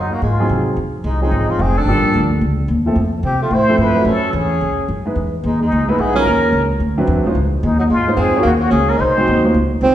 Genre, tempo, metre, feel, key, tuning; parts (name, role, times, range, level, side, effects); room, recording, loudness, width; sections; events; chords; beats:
jazz, small-group swing and bop; 219 BPM; 4/4; swing 61% on 8ths; Db major; A4 = 440 Hz
trumpet with plunger mute; melody; 0.0-9.4 s; D#4 to C5; -19 LUFS; left 2 dB
breathy tenor saxophone; second line; 0.0-9.9 s; Gb3 to E4; -21 LUFS; right 3 dB
upright bass; bass; 0.0-9.9 s; F1 to C3; -17 LUFS; equal
warm grand piano; accompaniment; 0.4-9.9 s; F3 to Db5; -20 LUFS; right 1 dB
wet recital hall reverb, RT60 1.5 s; recorded in a church or concert hall, nothing above 10.9 kHz; -14 LUFS; side -12 dB against mid
0.8-9.6 A section
0.2 Ab7; 0.8 Dbmaj9; 1.9 Gm7; 2.4 Dbmaj9; 3.0 Fmaj7; 4.1 Gbm7; 4.6 Cbadd9; 5.2 Emaj7; 6.3 Eb5; 6.8 D13; 7.4 Dbmaj9; 8.5 Gb69; 9.0 Ab7
0.22 0.50 | 0.77 1.05 1.32 1.60 | 1.87 2.15 2.42 2.70 | 2.97 3.25 3.52 3.80 | 4.07 4.34 4.62 4.89 | 5.17 5.44 5.72 5.99 | 6.26 6.54 6.81 7.09 | 7.36 7.63 7.91 8.18 | 8.46 8.73 9.00 9.28 | 9.55 9.82